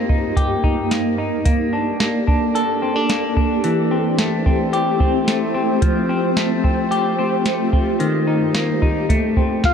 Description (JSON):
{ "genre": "dream pop", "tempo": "110 BPM", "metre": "4/4", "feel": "straight", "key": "G minor", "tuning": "A4 = 440 Hz", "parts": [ { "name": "granular cloud pad", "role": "sustained chords", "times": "0.0-9.6 s", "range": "G2 to D5", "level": "-21 LUFS", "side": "right 1 dB", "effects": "built-in reverb" }, { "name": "semi-hollow electric guitar", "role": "arpeggios", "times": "0.0-9.7 s", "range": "Eb3 to A4", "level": "-20 LUFS", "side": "left 2 dB", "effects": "lush chorus, ping-pong delay" }, { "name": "soft vintage rhythm box", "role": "drums", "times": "0.1-9.7 s", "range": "hi-hat, kick drum, snare drum", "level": "-19 LUFS", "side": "right 1 dB", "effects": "none" }, { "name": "soft octave-layered synth lead", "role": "melody", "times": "9.7 s", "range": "F5", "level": "-16 LUFS", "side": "left 3 dB", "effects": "chorus" } ], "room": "light reverb", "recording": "dark, warm production", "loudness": "-16 LUFS", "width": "side -7 dB against mid", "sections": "0.0-9.7 A section", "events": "none", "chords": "0.0 Eb/G; 1.5 Gmadd9; 3.6 C6; 5.8 Fadd9; 8.0 Eb/G; 9.1 Dm7" }